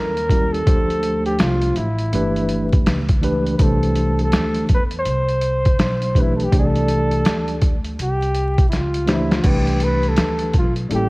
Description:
hip hop, jazz-hop; 82 BPM; 4/4; swing 63% on 16ths; C major; A4 = 440 Hz
breathy flugelhorn; melody; 0.0-11.1 s; E4 to C5; -23 LUFS; equal; slapback echo
mellow tine electric piano; accompaniment; 0.0-11.1 s; E3 to D5; -22 LUFS; equal; medium stereo tremolo
upright bass; bass; 0.0-11.1 s; G1 to E2; -22 LUFS; equal
boom bap sampler-style drum kit; drums; 0.2-11.1 s; crash cymbal, hi-hat, kick drum, snare drum; -19 LUFS; equal; vintage 12-bit sampler grit
light reverb; worn, warbling old tape, cassette tape, vinyl crackle, warbly pitch drift; -16 LUFS; side -23 dB against mid
0.0-9.4 A section; 9.4-11.1 A section
drum fill 8.7-9.4
0.0 A7b9; 0.7 Dm7; 2.1 G69; 3.6 C69

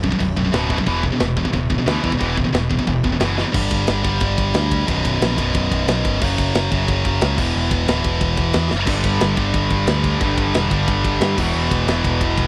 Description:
heavy metal; 180 BPM; 4/4; straight; A4 = 441 Hz
heavy high-gain guitar; riff; 0.0-12.5 s; B1 to G3; -23 LUFS; equal; distortion
scooped high-gain guitar; riff; 0.0-3.5, 8.9-12.5 s; B1 to G3; -26 LUFS; equal; distortion
picked electric bass; bass; 0.0-12.5 s; B0 to G2; -24 LUFS; equal
tight metal drum kit; drums; 0.0-12.4 s; crash cymbal, kick drum, ride cymbal, snare drum; -25 LUFS; equal
little or no reverb; dry, close 1970s-style studio recording; -19 LUFS; mono
0.0-3.5 A section; 3.5-12.5 B section
drum fill 3.4, 8.7
0.0 Bm; 0.9 E5; 3.5 G5; 4.9 B5; 6.2 F#5; 7.4 E5; 8.9 G5; 11.4 E5

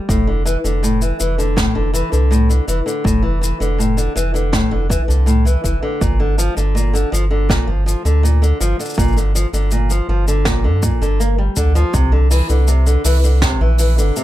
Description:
folktronica; 81 BPM; 4/4; straight; C mixolydian; A4 = 440 Hz
flamenco guitar; arpeggios; 0.0-14.2 s; A2 to Bb3; -20 LUFS; left 1 dB; ping-pong delay, plate reverb
warm sub bass; bass; 0.1-14.1 s; F1 to G2; -15 LUFS; equal
electronic kick drum; drums; 0.1-13.6 s; -20 LUFS; equal; overdrive
jazz brush drum kit; drums; 0.1-14.2 s; hi-hat, shaker, snare drum; -24 LUFS; equal
little or no reverb; -14 LUFS; side -14 dB against mid
0.0-11.9 A section; 11.9-14.2 B section
0.1 Dmadd9/F; 6.0 Gm7; 11.9 Cadd9

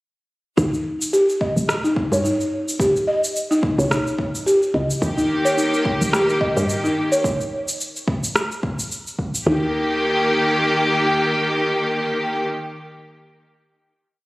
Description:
organic downtempo; 108 BPM; 4/4; swing 56% on 16ths; Eb major; A4 = 440 Hz
buzzing marimba with soft mallets; arpeggios; 0.6-9.7 s; Eb4 to Eb5; -20 LUFS; equal; digital delay
woody FM bass; bass; 0.6-11.1 s; Eb1 to G2; -21 LUFS; equal
electronic cabasa and rim click; drums; 0.6-9.4 s; -25 LUFS; equal; studio reverb
electronic kick drum; drums; 0.6-9.3 s; -24 LUFS; equal; studio reverb
rich studio string section; sustained chords; 5.0-12.4 s; Eb3 to G4; -20 LUFS; equal; sidechain pumping
moderate lush hall reverb, RT60 2.1 s; recorded on a phone in the room, studio reverb, compression; -18 LUFS; side -20 dB against mid
0.6-9.5 groove; 9.5-11.7 final chord
0.6 N.C.; 2.8 Badd9 (rootless); 5.0 Eb; 7.2 N.C.; 9.5 Eb

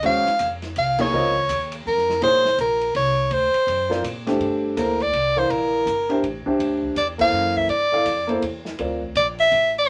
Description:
modal jazz; 164 BPM; 3/4; swing 63% on 8ths; G dorian from 4.4 s; A4 = 440 Hz
warm grand piano; accompaniment; 0.0-9.0 s; E3 to F5; -26 LUFS; equal
upright bass; bass; 0.0-9.9 s; G1 to A#2; -34 LUFS; equal
open jazz drum kit; drums; 0.0-9.6 s; crash cymbal, hi-hat, kick drum, ride cymbal, snare drum; -38 LUFS; equal
bright soprano saxophone; melody; 0.1-9.9 s; Bb4 to F5; -21 LUFS; equal
moderate club ambience, RT60 0.5 s; -21 LUFS; mono
0.0-4.4 A section; 4.4-9.9 B section
band accent 0.9, 7.1
0.0 Bbm; 3.3 D7b13; 4.4 Gm9

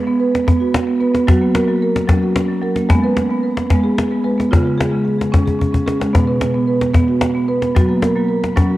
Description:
world meditative, meditative tuned percussion; 74 BPM (dotted quarters); 6/8; straight; A4 = 440 Hz
marimba with medium mallets; arpeggios; 0.0-8.8 s; B2 to B4; -15 LUFS; right 1 dB; tape echo, shimmer reverb
cajon; percussion; 0.1-8.8 s; -16 LUFS; left 1 dB
moderate spring reverb, RT60 1.9 s, small room ambience; home recording on cassette; -14 LUFS; side -16 dB against mid
0.0-8.8 A section
drum fill 5.5-6.1
0.0 B5; 1.3 F#; 2.9 G#m; 4.5 C#5; 6.1 B5; 7.8 F#

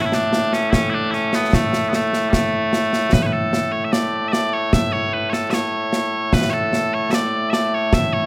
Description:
scottish traditional, Scottish pipe music; 75 BPM; 2/4; straight; A major; A4 = 441 Hz
loud bright bagpipes; melody; 0.0-8.3 s; A2 to E5; -22 LUFS; equal
concert snare drum and concert bass drum; drums; 0.1-8.1 s; -23 LUFS; equal
moderate recital hall reverb, RT60 1.5 s; -20 LUFS; mono
0.0-3.1 A section; 3.1-8.3 B section

